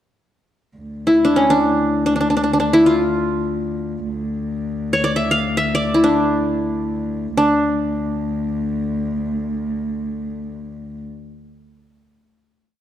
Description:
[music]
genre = Arabic maqam ensemble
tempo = free time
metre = none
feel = none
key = D minor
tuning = A4 = 440 Hz
[part]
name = warm cello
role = drone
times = 0.8-11.0 s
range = D2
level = -24 LUFS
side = left 2 dB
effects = none
[part]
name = qanun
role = melody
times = 1.1-11.0 s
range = C#4 to F5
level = -16 LUFS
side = equal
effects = none
[sound]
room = light reverb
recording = dark, warm production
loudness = -17 LUFS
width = side -11 dB against mid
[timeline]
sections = 0.8-7.4 free-time section; 7.4-10.7 final note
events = none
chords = none

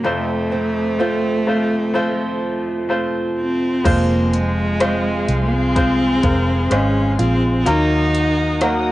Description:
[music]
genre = pop ballad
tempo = 63 BPM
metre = 4/4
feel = straight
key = unclear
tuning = A4 = 435 Hz
[part]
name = clear cello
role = melody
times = 0.0-8.9 s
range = Ab3 to Eb4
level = -20 LUFS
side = equal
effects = cassette tape
[part]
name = bright grand piano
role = accompaniment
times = 0.0-8.9 s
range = F1 to C5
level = -22 LUFS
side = left 2 dB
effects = cassette tape
[part]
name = nylon-string guitar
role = arpeggios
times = 0.0-8.9 s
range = F2 to Gb4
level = -24 LUFS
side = right 3 dB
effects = cassette tape, analog delay
[part]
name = muted studio string section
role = sustained chords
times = 3.9-8.9 s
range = Ab4 to Eb6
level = -28 LUFS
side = left 1 dB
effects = cassette tape
[part]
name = vintage muted fingered electric bass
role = bass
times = 3.9-8.9 s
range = F1 to Eb2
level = -20 LUFS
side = equal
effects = none
[part]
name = smooth R&B drum kit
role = drums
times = 3.9-8.8 s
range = crash cymbal, hi-hat, kick drum, rim click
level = -22 LUFS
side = equal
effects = cassette tape
[sound]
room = light reverb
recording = home recording on cassette, nothing above 10.9 kHz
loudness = -16 LUFS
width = side -16 dB against mid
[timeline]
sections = 0.0-3.9 A section; 3.9-8.9 B section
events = none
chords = 0.0 F; 3.9 Fm; 7.7 Ebm

